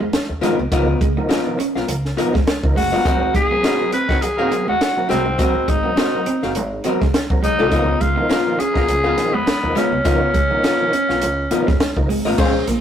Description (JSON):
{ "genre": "funk", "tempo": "103 BPM", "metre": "4/4", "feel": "swing 56% on 16ths", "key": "unclear", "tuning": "A4 = 441 Hz", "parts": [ { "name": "archtop guitar, miked and amplified", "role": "accompaniment", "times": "0.0-12.7 s", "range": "Cb4 to F5", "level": "-22 LUFS", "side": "left 2 dB", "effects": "none" }, { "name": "clean electric guitar", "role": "riff", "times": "0.0-12.8 s", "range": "Ab3 to Db4", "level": "-26 LUFS", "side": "right 3 dB", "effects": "vibrato effect" }, { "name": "upright bass", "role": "bass", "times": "0.0-12.8 s", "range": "Gb1 to F2", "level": "-26 LUFS", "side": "right 1 dB", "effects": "none" }, { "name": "compact cocktail drum kit", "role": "drums", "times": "0.1-12.8 s", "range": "crash cymbal, hi-hat, kick drum, snare drum", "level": "-20 LUFS", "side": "equal", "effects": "none" }, { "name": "overdriven tonewheel organ", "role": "stabs", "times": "0.4-12.8 s", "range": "Ab2 to C4", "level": "-26 LUFS", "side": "right 1 dB", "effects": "chorus vibrato, fast rotary speaker" }, { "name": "breathy tenor saxophone", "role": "melody", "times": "2.8-12.1 s", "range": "Cb4 to Cb5", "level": "-20 LUFS", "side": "left 1 dB", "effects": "none" }, { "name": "clear horn section", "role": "second line", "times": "3.6-4.6, 8.3-9.4 s", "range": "Eb3 to Cb5", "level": "-30 LUFS", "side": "equal", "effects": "none" } ], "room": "moderate stone room reverb, RT60 1.1 s", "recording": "rough rehearsal-room recording, tube saturation", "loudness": "-16 LUFS", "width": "side -9 dB against mid", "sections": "0.0-12.4 A section", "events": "none", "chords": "0.0 Db13; 3.1 Ab9; 7.7 Db13" }